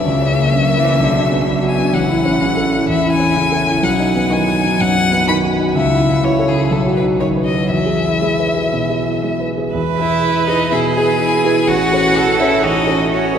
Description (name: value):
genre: quick classical-period movement for piano quartet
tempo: 125 BPM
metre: 4/4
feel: rubato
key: E major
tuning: A4 = 440 Hz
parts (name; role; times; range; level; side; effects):
- rich violin; melody; 0.0-13.4 s; G#4 to B5; -19 LUFS; left 3 dB; none
- clear cello; second line; 0.0-13.4 s; B2 to B4; -22 LUFS; right 5 dB; none
- warm concert grand piano; accompaniment; 0.0-13.4 s; A1 to C#5; -16 LUFS; equal; none
- clear violin; second line; 10.0-13.4 s; C#4 to G#4; -19 LUFS; equal; none
room: wet cathedral reverb, RT60 7.0 s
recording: none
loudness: -13 LUFS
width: side -8 dB against mid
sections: 0.0-9.7 A section; 9.7-13.4 B section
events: none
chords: 0.1 A#dim/C#; 1.0 Bm; 1.9 A; 3.8 B; 5.8 A/C#; 6.7 B; 7.7 E; 11.7 F#m/A